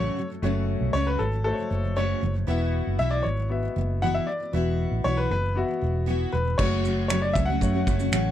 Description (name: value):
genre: acoustic pop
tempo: 117 BPM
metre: 4/4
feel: straight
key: F# minor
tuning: A4 = 441 Hz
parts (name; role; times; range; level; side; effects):
- bright upright piano; melody; 0.0-8.3 s; F#4 to F#5; -28 LUFS; left 2 dB; none
- clear baby grand piano; accompaniment; 0.0-8.3 s; A3 to E5; -33 LUFS; left 6 dB; none
- picked steel-string acoustic guitar; accompaniment; 0.0-8.3 s; F#2 to F#4; -29 LUFS; right 1 dB; double-tracked left and right
- vintage muted fingered electric bass; bass; 0.0-8.3 s; E1 to F#2; -26 LUFS; equal; none
- loose indie drum kit; drums; 6.6-8.2 s; crash cymbal, finger snaps, kick drum, shaker; -28 LUFS; equal; none
room: little or no reverb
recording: none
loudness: -23 LUFS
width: side -11 dB against mid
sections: 0.0-6.6 A section; 6.6-8.3 B section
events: none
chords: 0.0 F#m; 2.5 Esus2; 6.6 F#m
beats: | 0.43 0.94 1.46 1.97 | 2.48 3.00 3.51 4.02 | 4.54 5.05 5.56 6.08 | 6.59 7.10 7.61 8.13